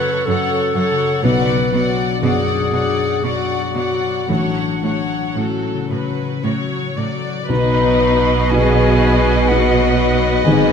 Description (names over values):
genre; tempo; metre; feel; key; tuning
cinematic, emotional film score for orchestra; 55-63 BPM; 3/4; rubato; B major from 7.5 s; A4 = 440 Hz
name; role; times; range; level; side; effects
mellow clarinet; second line; 0.0-10.7 s; C#4 to B4; -23 LUFS; left 1 dB; none
warm studio violin section; second line; 0.0-10.7 s; B3 to F#5; -24 LUFS; left 4 dB; none
felt-muted upright piano; accompaniment; 0.0-10.7 s; G#1 to F#4; -22 LUFS; left 2 dB; none
rich studio viola section; accompaniment; 0.0-10.7 s; F#3 to B4; -24 LUFS; right 2 dB; none
concert harp; arpeggios; 0.0-10.7 s; F#2 to A4; -26 LUFS; left 8 dB; none
clear studio cello section; bass; 0.3-10.7 s; F#2 to B2; -21 LUFS; right 3 dB; none
warm studio violin section; melody; 7.5-10.7 s; D#5; -22 LUFS; left 5 dB; none
mellow cor anglais; second line; 7.5-10.7 s; B4; -26 LUFS; right 3 dB; none
silver concert flute; second line; 7.5-10.7 s; F#5 to B5; -23 LUFS; left 1 dB; none
mellow French horn section; sustained chords; 7.5-10.7 s; F#4 to B4; -20 LUFS; left 3 dB; none
warm studio double bass section; bass; 7.5-10.7 s; G#1 to B1; -20 LUFS; right 3 dB; none
room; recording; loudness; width
moderate concert hall reverb, RT60 1.9 s; none; -14 LUFS; side -7 dB against mid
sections
0.0-7.5 A section; 7.5-10.7 A section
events
none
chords
0.0 F#m; 1.2 Bm; 4.3 F#m/A; 7.5 B